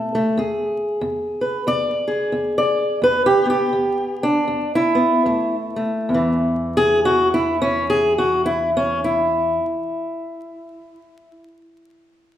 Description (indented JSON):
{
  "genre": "acoustic country blues, solo or duo",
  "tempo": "70-94 BPM",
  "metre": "4/4",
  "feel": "swing 61% on 8ths",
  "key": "E mixolydian",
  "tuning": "A4 = 443 Hz",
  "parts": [
    { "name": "fingerpicked steel-string acoustic guitar", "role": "solo", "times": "0.0-11.3 s", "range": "E2 to D5", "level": "-17 LUFS", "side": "equal", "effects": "none" }
  ],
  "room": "wet recital hall reverb, RT60 1.5 s",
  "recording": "recorded in a church or concert hall, vinyl crackle",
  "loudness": "-17 LUFS",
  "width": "side -11 dB against mid",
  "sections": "0.0-6.1 A section; 6.1-9.5 B section",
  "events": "slowing down 0.4-6.1",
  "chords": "0.4 E7; 5.3 F; 6.1 N.C."
}